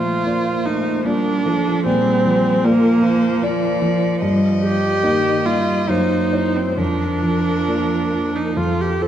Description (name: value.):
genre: classical, slow romantic movement for piano quartet.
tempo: 66-79 BPM.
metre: 3/4.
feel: rubato.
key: Bb major.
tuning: A4 = 436 Hz.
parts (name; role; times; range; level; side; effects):
rich violin; melody; 0.0-9.1 s; Ab4 to Eb5; -25 LUFS; left 7 dB; none.
rich cello; second line; 0.0-9.0 s; Eb3 to Bb3; -25 LUFS; right 4 dB; none.
clear viola; accompaniment; 0.0-9.1 s; Bb3 to A4; -19 LUFS; right 2 dB; none.
warm grand piano; accompaniment; 0.0-9.1 s; F2 to Eb5; -20 LUFS; left 1 dB; none.
room: moderate concert hall reverb, RT60 2.2 s.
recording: dark, warm production.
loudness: -16 LUFS.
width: side -10 dB against mid.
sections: 0.0-9.1 A section.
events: none.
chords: 0.0 Bb; 1.9 Bb7; 4.2 Eb/G; 5.9 Gb7; 6.8 Bb/F; 8.6 F.